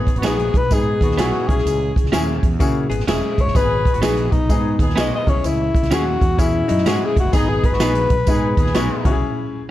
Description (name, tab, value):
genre	uptempo 1960s-style soul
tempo	127 BPM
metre	4/4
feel	swing 64% on 8ths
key	G# minor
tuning	A4 = 440 Hz
part	breathy alto saxophone	melody	0.0-8.9 s	D#4 to D#5	-22 LUFS	left 3 dB	tape echo
part	warm horn section	second line	0.0-9.1 s	G#3 to G#4	-28 LUFS	equal	none
part	clear upright piano	accompaniment	0.0-9.6 s	B3 to G#4	-26 LUFS	left 5 dB	none
part	swinging big-band drum kit	drums	0.1-9.1 s	hi-hat, kick drum, snare drum	-19 LUFS	right 1 dB	none
part	clean electric guitar	stabs	0.2-8.9 s	B3 to G#4	-26 LUFS	right 4 dB	spring reverb
part	fretless electric bass	bass	0.2-9.2 s	E1 to C#3	-22 LUFS	equal	none
part	tambourine	percussion	0.2-8.9 s	none	-36 LUFS	right 5 dB	none
part	hollow-body jazz guitar	riff	2.6-3.5, 6.4-7.3 s	E3 to G#4	-26 LUFS	left 6 dB	none
room	light reverb, small room ambience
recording	cassette tape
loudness	-15 LUFS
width	side -14 dB against mid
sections	0.0-9.7 A section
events	alto saxophone solo 0.0-9.7; break 9.2-9.7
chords	0.0 G#m; 1.4 C#m; 3.6 G#m; 5.2 C#m; 7.3 G#m; 9.0 C#m